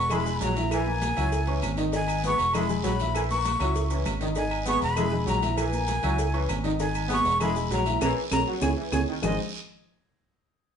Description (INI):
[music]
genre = latin, salsa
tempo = 197 BPM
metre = 4/4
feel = straight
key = G# minor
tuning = A4 = 440 Hz
[part]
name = breathy bright jazz flute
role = melody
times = 0.0-9.4 s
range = D#5 to C#6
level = -28 LUFS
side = left 1 dB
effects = none
[part]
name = dark baby grand piano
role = accompaniment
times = 0.0-9.4 s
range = D#3 to E6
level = -32 LUFS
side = equal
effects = none
[part]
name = fingered electric bass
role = bass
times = 0.0-9.4 s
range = E1 to C#2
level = -29 LUFS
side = equal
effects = none
[part]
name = clear trombone section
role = second line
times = 0.1-9.3 s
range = G#2 to B3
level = -32 LUFS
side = left 1 dB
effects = none
[part]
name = agogo bells and timbales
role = percussion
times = 0.1-9.3 s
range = none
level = -35 LUFS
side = right 6 dB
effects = none
[part]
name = claves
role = percussion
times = 0.1-9.3 s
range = none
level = -40 LUFS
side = left 5 dB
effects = none
[part]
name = congas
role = percussion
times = 0.1-9.3 s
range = none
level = -35 LUFS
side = left 1 dB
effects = none
[part]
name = cowbell and bongos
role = percussion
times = 0.1-9.3 s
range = none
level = -37 LUFS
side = right 3 dB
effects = none
[part]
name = guiro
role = percussion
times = 0.1-9.3 s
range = none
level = -41 LUFS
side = right 5 dB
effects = none
[part]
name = maracas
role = percussion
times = 0.1-9.3 s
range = none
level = -44 LUFS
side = left 5 dB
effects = none
[sound]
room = wet studio reverb, RT60 0.7 s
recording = band playing live in one room, nothing above 10.7 kHz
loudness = -23 LUFS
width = side -7 dB against mid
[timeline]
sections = 0.0-9.2 A section; 9.2-10.4 B section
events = band accent 8.0-9.2; drum fill 8.3-9.2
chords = 0.1 E; 0.7 A#m7b5; 1.3 C#m; 1.9 G#m; 2.5 E; 3.1 A#dim; 3.8 C#m; 4.4 G#m; 5.0 E; 5.6 A#m7b5; 6.2 C#m; 6.8 G#m; 7.4 E; 8.0 A#m7b5; 8.6 C#m; 9.2 G#5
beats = 0.11 0.41 | 0.72 1.02 1.32 1.63 | 1.93 2.24 2.54 2.84 | 3.15 3.45 3.75 4.06 | 4.36 4.67 4.97 5.28 | 5.58 5.88 6.19 6.49 | 6.79 7.10 7.40 7.71 | 8.01 8.32 8.62 8.92 | 9.23